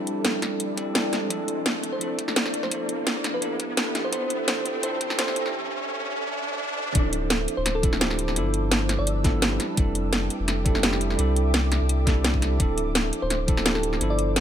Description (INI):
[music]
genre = liquid drum and bass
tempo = 170 BPM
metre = 4/4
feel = straight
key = D dorian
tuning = A4 = 441 Hz
[part]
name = bell-like tine electric piano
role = accompaniment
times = 0.0-14.4 s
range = F3 to A4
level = -29 LUFS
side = right 1 dB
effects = tape echo
[part]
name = ethereal airy pad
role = sustained chords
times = 0.0-14.4 s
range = F3 to E6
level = -33 LUFS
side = right 2 dB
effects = ensemble chorus, built-in reverb, sidechain pumping
[part]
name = riser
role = sound effects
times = 0.0-7.0 s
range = none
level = -32 LUFS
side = equal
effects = none
[part]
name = drum and bass drum kit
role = drums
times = 0.1-14.4 s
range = hi-hat, snare drum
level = -25 LUFS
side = equal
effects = none
[part]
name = electronic kick drum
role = drums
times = 0.4-13.6 s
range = none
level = -24 LUFS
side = equal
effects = high-pass filter on kick, high-pass filter on room
[part]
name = bell-like FM electric piano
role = melody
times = 1.9-5.3, 7.6-9.3, 13.2-14.4 s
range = A4 to D5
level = -32 LUFS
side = equal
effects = chorus, tape echo
[part]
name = warm sub bass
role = bass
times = 7.0-14.4 s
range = D1 to C2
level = -26 LUFS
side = equal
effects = tube saturation
[sound]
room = moderate recital hall reverb, RT60 1.4 s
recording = high-pass filter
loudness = -22 LUFS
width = side -10 dB against mid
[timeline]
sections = 0.0-7.0 A section; 7.0-14.4 B section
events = build-up 0.0-7.0; riser 0.0-7.0; filter sweep on FM electric piano 0.0-7.0; break 5.5-7.0; drop 7.0-14.4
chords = 0.0 C69; 1.3 Dm7; 2.7 G13; 4.0 Fmaj13; 5.5 C69; 7.0 Dm7; 8.4 G13; 9.6 Fmaj13; 11.2 C69; 12.6 Dm7